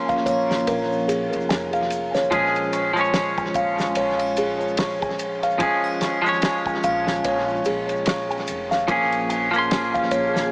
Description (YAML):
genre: trip hop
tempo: 73 BPM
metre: 4/4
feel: swing 58% on 16ths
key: unclear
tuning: A4 = 439 Hz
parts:
  - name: clean electric guitar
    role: accompaniment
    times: 0.0-10.5 s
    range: F3 to C6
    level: -23 LUFS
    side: equal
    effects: harmonic tremolo, vintage 12-bit sampler grit, tape echo
  - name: music box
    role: arpeggios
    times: 0.1-10.5 s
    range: Ab4 to Db6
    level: -23 LUFS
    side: equal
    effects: analog delay
  - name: warm soul drum kit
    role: drums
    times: 0.1-10.5 s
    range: kick drum, ride cymbal, snare drum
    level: -28 LUFS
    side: equal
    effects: tape echo
  - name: egg shaker and triangle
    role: percussion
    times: 0.1-10.5 s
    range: none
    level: -44 LUFS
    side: equal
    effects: tape echo
  - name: upright bass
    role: bass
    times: 0.3-10.5 s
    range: F1 to Bb1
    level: -37 LUFS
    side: equal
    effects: none
  - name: wind-like tuned noise texture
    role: texture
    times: 9.6-10.5 s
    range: Ab4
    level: -35 LUFS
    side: equal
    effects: none
room: moderate plate reverb, RT60 2.2 s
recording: echo-heavy mix, small speaker sound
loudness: -19 LUFS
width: side -34 dB against mid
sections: 0.0-10.5 A section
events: none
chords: 0.0 Bbm7; 2.3 Db/Bb; 8.9 Bbm7